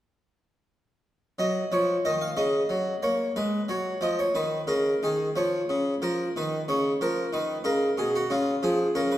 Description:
classical, baroque-style suite movement for harpsichord; 61 BPM (dotted quarters); 12/8; rubato; F# major; A4 = 440 Hz
harpsichord; solo; 1.4-9.2 s; B2 to E#5; -24 LUFS; equal
wet recital hall reverb, RT60 1.8 s; recorded in a church or concert hall; -24 LUFS; side -13 dB against mid
1.4-9.2 A section
1.4 F#; 3.4 G#5; 5.4 C#7

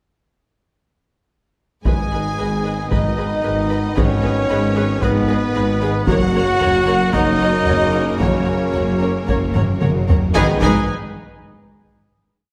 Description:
cinematic, epic orchestral film score; 113 BPM; 4/4; straight; G# minor; A4 = 438 Hz
rich symphonic violin section; melody; 1.8-10.9 s; B4 to G#5; -29 LUFS; equal
rich symphonic violin section; second line; 1.8-10.9 s; D#5 to B5; -35 LUFS; equal
dark French horn section; sustained chords; 1.8-10.6 s; B3 to G#4; -28 LUFS; equal
warm trombone section; sustained chords; 1.8-10.6 s; C#3 to B3; -30 LUFS; equal
warm trumpet; stabs; 1.8-10.8 s; B3 to G#4; -26 LUFS; equal
rich symphonic viola section; accompaniment; 1.9-10.9 s; D#4 to C#5; -29 LUFS; equal
rich symphonic string section; sustained chords; 1.9-10.7 s; G#3 to D#5; -30 LUFS; equal
clear symphonic double bass section; bass; 1.9-10.9 s; F#1 to G#1; -26 LUFS; equal
rich symphonic cello section; bass; 1.9-10.9 s; F#2 to G#2; -26 LUFS; equal
taiko ensemble; drums; 1.9-11.6 s; -22 LUFS; equal
moderate scoring stage reverb, RT60 1.5 s; -18 LUFS; mono
1.9-10.4 theme; 10.4-12.5 final chord
drum fill 9.6-10.4
1.9 G#m; 6.1 F#; 10.4 G#m

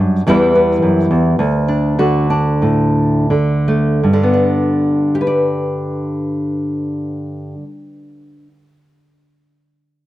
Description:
folk, solo fingerstyle acoustic guitar; 80-111 BPM; 4/4; rubato; G major; A4 = 440 Hz
nylon-string guitar; solo; 0.0-8.5 s; D2 to D5; -13 LUFS; equal
small room ambience; dry, close 1970s-style studio recording; -13 LUFS; side -15 dB against mid
0.0-4.0 A section; 4.0-9.9 B section
slowing down 0.0-4.0
0.3 Em; 1.4 D; 4.0 G

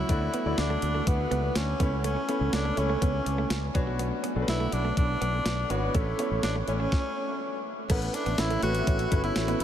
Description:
1980s-style pop; 123 BPM; 4/4; straight; A4 = 440 Hz
clear tenor saxophone; melody; 0.0-9.6 s; A3 to F#4; -31 LUFS; equal; diffuse ambient delay
bright concert grand piano; accompaniment; 0.0-9.6 s; A3 to D5; -33 LUFS; left 2 dB
direct-recorded clean electric guitar; riff; 0.0-9.6 s; F#3 to D4; -36 LUFS; right 4 dB; wide subtle chorus, diffuse ambient delay
fingered electric bass; bass; 0.0-9.6 s; G1 to D2; -30 LUFS; equal
clean 12-bit digital drum machine; drums; 0.1-9.6 s; crash cymbal, hi-hat, kick drum, snare drum; -31 LUFS; equal
chorused pulse-width pad; sustained chords; 7.9-9.6 s; A4 to B5; -37 LUFS; right 1 dB
wet huge ambient reverb, RT60 8.7 s; dreamy mix soaked in reverb; -25 LUFS; side -10 dB against mid
0.0-7.9 A section; 7.9-9.6 B section
stop 6.9-7.9
0.1 Dadd9; 1.8 A/C#; 3.8 Bmadd9; 5.9 A; 7.9 Aadd9

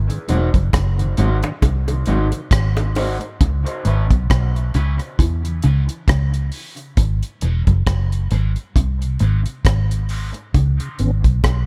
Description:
dub reggae; 67 BPM; 4/4; swing 57% on 16ths; C# minor; A4 = 440 Hz
vintage muted fingered electric bass; bass; 0.0-11.7 s; E1 to E2; -20 LUFS; equal
mellow tonewheel organ; accompaniment; 0.1-11.1 s; G#2 to C#4; -31 LUFS; equal; chorus vibrato, stopped rotary speaker, high-pass filter, dub echo
deep reggae drum kit; drums; 0.1-11.7 s; hi-hat, kick drum, rim click; -21 LUFS; equal
electric guitar at the edge of break-up; accompaniment; 0.3-10.3 s; C#4 to B#4; -31 LUFS; equal; subtle chorus, high-pass filter, dub echo
mellow electric guitar; riff; 0.3-10.7 s; E2 to E3; -28 LUFS; equal; subtle chorus, dub echo
bongos; percussion; 0.7-3.2, 11.4-11.7 s; -32 LUFS; equal; high-pass filter on perc, dub echo
small room reverb; echo-heavy mix; -19 LUFS; mono
0.0-11.7 A section
filter sweep 0.0-10.5; part muted 3.4-10.5, 10.5-11.7
0.0 G#7; 3.4 C#m7; 7.0 G#7; 10.5 C#7(no3)

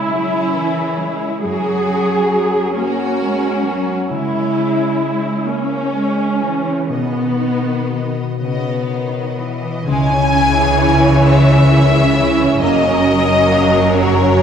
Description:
cinematic, emotional film score for orchestra; 40-46 BPM (dotted quarters); 6/8; rubato; C# dorian; A4 = 442 Hz
warm symphonic violin section; melody; 0.0-14.4 s; G#4 to G#5; -20 LUFS; left 2 dB
warm studio viola section; accompaniment; 0.0-14.4 s; E3 to G#4; -18 LUFS; right 1 dB
concert harp; arpeggios; 0.0-14.4 s; F#2 to C#5; -23 LUFS; left 3 dB
rich studio cello section; bass; 0.0-14.4 s; F#2 to A#3; -19 LUFS; equal
clear studio violin section; second line; 0.1-14.4 s; G#3 to C#5; -22 LUFS; left 1 dB
warm studio double bass section; bass; 9.9-14.4 s; F#1 to C#2; -20 LUFS; right 3 dB
wet scoring stage reverb, RT60 1.9 s; heard from further back in the room; -13 LUFS; side -8 dB against mid
0.0-9.9 A section; 9.9-14.4 B section
0.0 C#m; 1.4 F#; 4.1 C#m; 6.9 B; 9.9 C#m; 12.6 F#

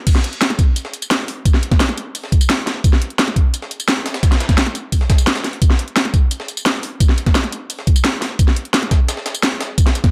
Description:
drum and bass; 173 BPM; 4/4; straight
breakbeat sampler-style drum kit; drums; 0.1-10.1 s; hi-hat, snare drum; -31 LUFS; equal; high-pass filter on hats, high-pass filter on snare
drum and bass drum kit; drums; 0.1-10.1 s; crash cymbal, hi-hat, snare drum, tambourine; -21 LUFS; equal; overdrive
electronic kick drum; drums; 0.1-10.1 s; -16 LUFS; equal
light reverb; dark, warm production; -17 LUFS; mono
0.0-10.1 A section

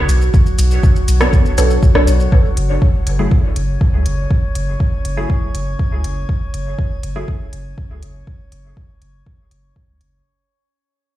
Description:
dub techno; 121 BPM; 4/4; straight; F# minor; A4 = 442 Hz
warm sub bass; bass; 0.0-10.2 s; F#1 to C#2; -16 LUFS; equal; sidechain pumping
drifting glass-harmonics texture; texture; 0.0-10.3 s; F#3 to C#5; -27 LUFS; equal; chorus, built-in reverb, sidechain pumping
deep house drum kit; drums; 0.1-10.1 s; hi-hat, rim click, shaker; -24 LUFS; equal; dub echo
electronic kick drum; drums; 0.3-9.9 s; -14 LUFS; equal
filtered dub chord stab; stabs; 1.2-7.3 s; F#3 to C#5; -22 LUFS; equal; chorus, phaser, sidechain pumping, dub echo
digital ambience; played on a big sound system in a bare room, stone room reverb; -13 LUFS; side -14 dB against mid
0.0-2.3 A section; 2.3-10.3 B section
fade-out 2.3-10.3
0.0 Bm9; 2.3 F#m9

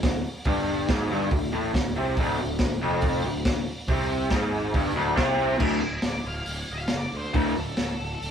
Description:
garage rock duo or trio; 139 BPM; 4/4; straight; A4 = 440 Hz
fuzz picked electric bass; bass; 0.0-8.3 s; D1 to D2; -32 LUFS; equal; overdrive
crunchy breakbeat drum kit; drums; 0.0-8.3 s; crash cymbal, hi-hat, kick drum, snare drum; -27 LUFS; equal
raw garage guitar; riff; 0.1-7.5 s; D2 to D3; -25 LUFS; equal; overdrive
octave-fuzz lead guitar; melody; 6.1-8.3 s; A4 to F5; -35 LUFS; left 1 dB; distortion
moderate studio reverb, RT60 0.7 s; band playing live in one room; -23 LUFS; side -8 dB against mid
0.0-5.6 A section; 5.6-8.3 B section
lead electric guitar solo 5.6-8.3
0.0 D5

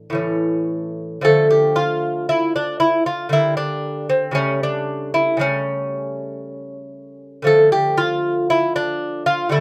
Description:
classical, baroque-style dance for lute; 58 BPM; 3/4; rubato; D minor; A4 = 440 Hz
lute; solo; 0.0-9.6 s; A2 to A4; -19 LUFS; equal
light reverb; -19 LUFS; mono
0.0-1.3 A section; 1.3-9.6 A section
0.2 A; 1.3 Dm; 3.3 C9/D; 4.4 A7/C#; 7.5 Dm

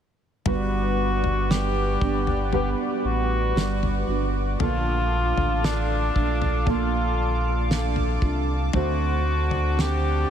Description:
pop ballad; 58 BPM; 4/4; straight; G major; A4 = 440 Hz
warm cor anglais; melody; 0.5-10.3 s; D4 to G4; -28 LUFS; left 2 dB; diffuse ambient delay
warm upright piano; accompaniment; 0.5-10.3 s; G2 to F#5; -31 LUFS; right 1 dB; wide subtle chorus
chorused pulse-width pad; sustained chords; 0.5-10.3 s; A4 to D6; -32 LUFS; right 1 dB
nylon-string guitar; arpeggios; 0.5-10.3 s; Bb2 to F#4; -31 LUFS; right 5 dB; analog chorus
sub bass with octave; bass; 0.5-10.3 s; G1 to D2; -25 LUFS; equal
damped 70s drum kit; drums; 0.5-10.0 s; kick drum, snare drum, toms; -29 LUFS; left 1 dB
moderate huge ambient reverb, RT60 6.7 s; dreamy mix soaked in reverb; -21 LUFS; side -9 dB against mid
0.5-10.3 A section
0.5 Gmaj7; 4.6 Bbmaj7; 8.7 D7

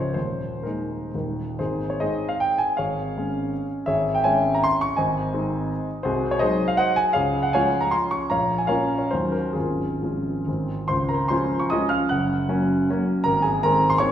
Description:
classical, romantic triple-time dance for piano with dotted rhythms; 119-175 BPM; 3/4; rubato; Ab major, Db major from 6.1 s; A4 = 443 Hz
clear grand piano; solo; 0.0-14.1 s; Db1 to Gb6; -20 LUFS; equal
wet recital hall reverb, RT60 1.8 s; heard from further back in the room; -21 LUFS; side -10 dB against mid
0.0-1.6 A section; 1.6-10.9 B section; 10.9-14.1 C section
0.2 Ebsus4; 1.1 Eb; 1.6 Ab; 2.8 Db/Ab; 3.9 Dbm/Ab; 5.0 Ab; 6.1 Ab7/C; 7.2 Db; 8.3 Bbm; 9.1 Ebm7; 9.6 Db/Ab; 10.5 Ab; 10.9 Db; 12.1 Gb; 13.2 Ab

